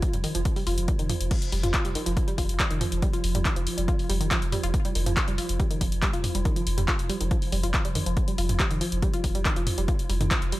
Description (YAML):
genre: driving peak-time techno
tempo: 140 BPM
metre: 4/4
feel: straight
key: unclear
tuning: A4 = 439 Hz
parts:
  - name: saturated sub bass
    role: bass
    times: 0.0-10.5 s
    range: F1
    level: -28 LUFS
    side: equal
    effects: tube saturation, sidechain pumping, low-pass filter
  - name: metallic inharmonic drone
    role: drone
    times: 0.0-10.6 s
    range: F3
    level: -35 LUFS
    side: right 2 dB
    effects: chorus, built-in reverb, phaser, sidechain pumping
  - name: electronic kick drum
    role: drums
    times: 0.0-10.4 s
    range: none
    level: -26 LUFS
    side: equal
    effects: none
  - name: punchy analog drum machine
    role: drums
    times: 0.0-10.6 s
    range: crash cymbal, handclaps, hi-hat, toms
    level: -29 LUFS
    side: equal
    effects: sidechain pumping on hats, sidechain pumping on toms, sidechain pumping on cymbals
  - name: analog pluck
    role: riff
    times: 0.1-10.6 s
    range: Eb3 to F4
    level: -32 LUFS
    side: right 1 dB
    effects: chorus, tube saturation, sidechain pumping, digital delay
room: digital ambience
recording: none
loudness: -23 LUFS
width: side -17 dB against mid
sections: 0.0-10.6 A section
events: none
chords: 0.0 F5